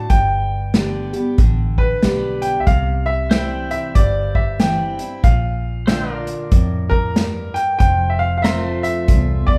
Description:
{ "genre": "honky-tonk and classic country", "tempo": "94 BPM", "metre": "4/4", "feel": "swing 62% on 8ths", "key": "C major", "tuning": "A4 = 440 Hz", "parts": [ { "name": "bright upright piano", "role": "second line", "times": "0.0-9.6 s", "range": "Bb4 to A5", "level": "-24 LUFS", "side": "equal", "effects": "none" }, { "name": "picked steel-string acoustic guitar", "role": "accompaniment", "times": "0.0-9.6 s", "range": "E2 to G4", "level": "-27 LUFS", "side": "equal", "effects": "none" }, { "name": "vintage muted fingered electric bass", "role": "bass", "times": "0.1-9.6 s", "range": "F1 to F2", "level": "-24 LUFS", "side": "equal", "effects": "none" }, { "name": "vintage drum kit", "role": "drums", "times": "0.1-9.6 s", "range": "hi-hat, kick drum, snare drum", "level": "-19 LUFS", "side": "equal", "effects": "none" }, { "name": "pedal steel guitar", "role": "sustained chords", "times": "3.3-9.6 s", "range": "F4 to G5", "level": "-32 LUFS", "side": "equal", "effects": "none" } ], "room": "moderate large studio reverb, RT60 1.1 s", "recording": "band playing live in one room", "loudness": "-18 LUFS", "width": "mono", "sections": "0.0-9.6 A section", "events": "upright piano solo 0.0-9.6", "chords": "0.1 Gadd9; 2.7 C; 5.2 Bb; 7.8 F", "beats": "| 0.10 0.75 1.39 2.03 | 2.67 3.31 3.95 4.59 | 5.24 5.88 6.52 7.16 | 7.80 8.44 9.08" }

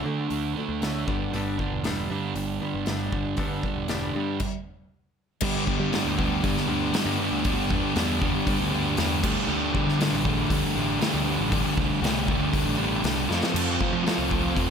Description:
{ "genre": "quiet-loud alternative rock", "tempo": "118 BPM", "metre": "4/4", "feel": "straight", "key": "G major, G mixolydian from 5.4 s", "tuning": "A4 = 440 Hz", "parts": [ { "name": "fingerpicked steel-string acoustic guitar", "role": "arpeggios", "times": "0.0-4.4 s", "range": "G2 to D4", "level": "-32 LUFS", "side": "left 7 dB", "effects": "none" }, { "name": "thick fuzz guitar", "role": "riff", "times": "0.0-14.7 s", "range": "G2 to F4", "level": "-27 LUFS", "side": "right 10 dB", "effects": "distortion" }, { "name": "picked electric bass", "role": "bass", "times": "0.1-14.7 s", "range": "E1 to G3", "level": "-31 LUFS", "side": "equal", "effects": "none" }, { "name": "big rock drum kit", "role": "drums", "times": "0.3-14.7 s", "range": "crash cymbal, hi-hat, kick drum, snare drum, splash cymbal", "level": "-29 LUFS", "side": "left 1 dB", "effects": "none" }, { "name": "thick fuzz guitar", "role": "riff", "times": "5.4-14.7 s", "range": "D3 to A4", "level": "-27 LUFS", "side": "left 12 dB", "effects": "distortion" } ], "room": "light reverb", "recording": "none", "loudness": "-23 LUFS", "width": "side -7 dB against mid", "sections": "0.0-5.4 A section; 5.4-14.7 B section", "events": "stop 4.4-5.4; drum fill 13.3", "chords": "0.0 D; 1.1 G; 9.2 Dsus4; 13.3 F", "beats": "0.32 0.83 | 1.34 1.85 2.37 2.88 | 3.39 3.90 4.41 4.92 | 5.43 5.94 6.45 6.96 | 7.46 7.97 8.48 8.98 | 9.49 10.00 10.50 11.01 | 11.52 12.03 12.53 13.04 | 13.55 14.06 14.57" }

